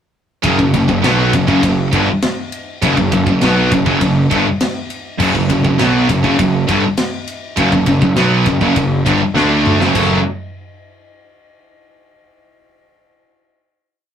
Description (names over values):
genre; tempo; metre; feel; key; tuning
heavy metal; 101 BPM; 4/4; straight; F# phrygian; A4 = 440 Hz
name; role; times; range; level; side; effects
heavy high-gain guitar; riff; 0.4-10.2 s; F#2 to D4; -19 LUFS; right 4 dB; distortion
high-gain distorted guitar; riff; 0.4-10.2 s; F#2 to D4; -18 LUFS; left 1 dB; distortion
fuzz picked electric bass; bass; 0.4-10.2 s; F#1 to D2; -18 LUFS; equal; overdrive
tight metal drum kit; drums; 0.4-10.1 s; crash cymbal, kick drum, ride cymbal, snare drum, toms; -20 LUFS; equal; none
sludgy distorted guitar; riff; 0.5-10.2 s; F#2 to A4; -16 LUFS; equal; overdrive
room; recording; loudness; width
moderate small room reverb, RT60 0.5 s; rough rehearsal-room recording, tube saturation; -12 LUFS; side -8 dB against mid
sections
0.4-9.9 riff; 9.9-12.3 final chord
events
drum fill 9.4-9.9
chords
0.4 F#m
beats
| 0.44 1.04 1.64 2.23 | 2.83 3.42 4.02 4.61 | 5.21 5.80 6.39 6.98 | 7.58 8.17 8.76 9.35 | 9.95